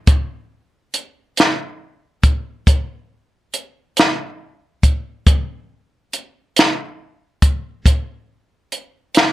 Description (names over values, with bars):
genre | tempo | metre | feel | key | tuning
blues | 46 BPM (dotted quarters) | 12/8 | straight | none | none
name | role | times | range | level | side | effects
compact cocktail drum kit | drums | 0.1-9.3 s | hi-hat, kick drum, snare drum | -13 LUFS | equal | none
room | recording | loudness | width
little or no reverb | none | -16 LUFS | side -16 dB against mid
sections
0.0-9.3 A section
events
none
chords
none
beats
| 0.07 1.37 2.67 3.96 | 5.26 6.55 7.85 9.15